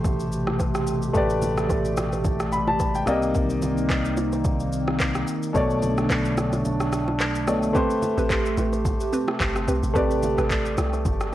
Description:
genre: amapiano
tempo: 109 BPM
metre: 4/4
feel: swing 55% on 16ths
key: unclear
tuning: A4 = 440 Hz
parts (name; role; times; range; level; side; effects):
- clear grand piano; accompaniment; 0.0-11.3 s; B2 to B5; -26 LUFS; left 2 dB; none
- hollow soft pad; sustained chords; 0.0-11.3 s; B2 to G4; -28 LUFS; right 2 dB; chorus, sidechain pumping
- fingered electric bass; bass; 0.0-7.7 s; A1 to C2; -28 LUFS; equal; none
- smooth R&B drum kit; drums; 0.0-11.3 s; handclaps, kick drum, rim click, shaker; -27 LUFS; equal; none
- congas and bongos; percussion; 0.0-11.2 s; none; -33 LUFS; right 2 dB; none
- hollow square pluck; stabs; 7.7-10.5 s; C4 to B4; -29 LUFS; right 2 dB; chorus, tape echo
- deep log drum bass; bass; 8.2-11.3 s; G1 to C2; -27 LUFS; equal; none
room: digital ambience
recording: dry, gritty hardware recording, cassette tape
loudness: -21 LUFS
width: side -13 dB against mid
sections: 0.0-11.3 A section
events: kick muted 6.7-7.8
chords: 0.0 Am9; 3.1 Cm9; 5.5 Bm9; 7.8 Am9

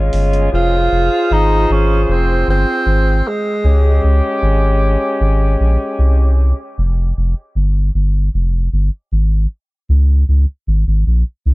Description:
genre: dub reggae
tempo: 77 BPM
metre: 4/4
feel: straight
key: F minor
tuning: A4 = 440 Hz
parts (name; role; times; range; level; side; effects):
- clear horn section; second line; 0.0-6.3 s; Ab3 to C5; -19 LUFS; left 1 dB; dub echo
- soft dub sub bass; bass; 0.0-11.5 s; F1 to Db2; -13 LUFS; equal; none
- electronic hi-hat; drums; 0.1-0.5 s; none; -37 LUFS; right 2 dB; none
- warm tenor saxophone; melody; 0.5-4.0 s; Ab3 to F4; -18 LUFS; right 1 dB; dub echo
room: little or no reverb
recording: dry, close 1970s-style studio recording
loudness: -12 LUFS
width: side -22 dB against mid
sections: 0.5-11.5 A section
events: break 0.0-0.5; band accent 0.0-0.5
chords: 0.0 Db; 0.5 Fm; 3.6 Db5; 6.8 Fm; 9.9 Db5

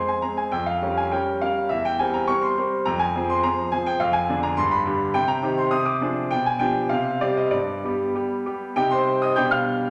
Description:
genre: classical-period piano sonatina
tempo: 103 BPM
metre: 2/4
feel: rubato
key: F minor, C minor from 4.0 s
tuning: A4 = 441 Hz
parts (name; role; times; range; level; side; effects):
- bright concert grand piano; solo; 0.0-9.9 s; E2 to G6; -23 LUFS; equal; none
room: wet recital hall reverb, RT60 1.3 s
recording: none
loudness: -23 LUFS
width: mono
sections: 0.0-8.8 A section; 8.8-9.9 B section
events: none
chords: 0.0 Fm (rootless); 0.5 Gm7b5/F; 1.7 C7/E; 2.9 Fm; 4.0 Ddim/F; 4.6 G; 5.2 Cm; 5.7 Dm7b5/C; 6.3 G7/B; 6.9 C5; 7.5 G; 8.8 Cm; 9.4 G7/B

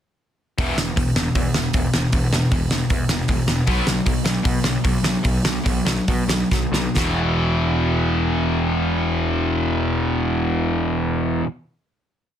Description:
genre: punk rock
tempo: 131-156 BPM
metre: 4/4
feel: straight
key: unclear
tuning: A4 = 439 Hz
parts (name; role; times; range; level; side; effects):
- distorted electric guitar; riff; 0.6-11.5 s; E2 to B3; -21 LUFS; left 1 dB; distortion
- fuzz picked electric bass; bass; 0.6-11.4 s; E1 to B2; -24 LUFS; equal; overdrive
- loose indie drum kit; drums; 0.6-7.1 s; hi-hat, kick drum, snare drum; -21 LUFS; equal; none
room: light reverb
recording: dense, heavily limited modern master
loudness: -18 LUFS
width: side -10 dB against mid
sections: 0.6-7.0 verse; 7.0-10.6 final chord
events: slowing down 3.7-7.0; drum fill 6.5-7.0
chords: 0.6 E5; 3.7 B5; 7.0 E5

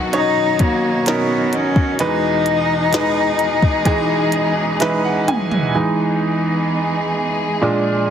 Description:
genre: pop ballad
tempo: 64 BPM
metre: 4/4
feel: straight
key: unclear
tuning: A4 = 440 Hz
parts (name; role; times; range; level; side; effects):
- bright upright piano; accompaniment; 0.0-8.1 s; B1 to G#5; -19 LUFS; right 2 dB; none
- clear studio string section; sustained chords; 0.0-8.1 s; Bb2 to G#4; -24 LUFS; left 2 dB; none
- minimal click drum kit; drums; 0.1-5.7 s; hi-hat, kick drum, snare drum, toms; -19 LUFS; equal; none
- rich cello; melody; 0.2-5.3 s; Bb3 to D#4; -19 LUFS; left 3 dB; none
room: moderate lush hall reverb, RT60 2.8 s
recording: heavily compressed radio sound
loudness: -15 LUFS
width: side -8 dB against mid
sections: 0.0-5.8 A section; 5.8-8.1 B section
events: upright piano fill 3.9-5.8; drum fill 4.8-5.8; upright piano solo 5.8-8.1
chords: 0.0 Badd9; 2.0 Emaj7

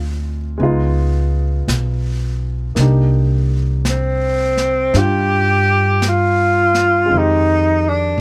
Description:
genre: jazz ballad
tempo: 55 BPM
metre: 4/4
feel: swing 66% on 8ths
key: unclear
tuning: A4 = 440 Hz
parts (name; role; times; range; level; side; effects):
- breathy tenor saxophone; melody; 0.0-8.2 s; C4 to G4; -17 LUFS; equal; none
- warm baby grand piano; accompaniment; 0.0-8.2 s; Eb3 to G4; -26 LUFS; equal; none
- upright bass; bass; 0.0-8.2 s; Cb2 to G2; -19 LUFS; equal; none
- jazz brush drum kit; drums; 0.6-8.2 s; brushed snare drum, hi-hat, snare drum; -28 LUFS; equal; none
room: little or no reverb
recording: close, detailed microphones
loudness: -16 LUFS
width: mono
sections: 0.0-8.2 A section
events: none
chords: 0.0 Dm7b5; 0.6 Db9; 2.8 Cm9; 7.1 Fm7

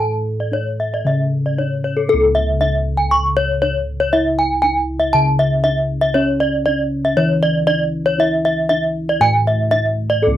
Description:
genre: Balinese gamelan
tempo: 118 BPM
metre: 4/4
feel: straight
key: C# pelog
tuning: A4 = 440 Hz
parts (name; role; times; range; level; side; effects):
- gamelan-type bronze metallophone; arpeggios; 0.0-10.4 s; A4-20c to C#6; -16 LUFS; equal; none
- gamelan-type bossed gongs; bass; 0.0-10.4 s; C#2 to A4-20c; -19 LUFS; equal; none
room: little or no reverb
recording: dry, close 1970s-style studio recording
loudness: -15 LUFS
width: side -12 dB against mid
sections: 0.0-2.1 A section; 2.1-10.4 B section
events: none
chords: none

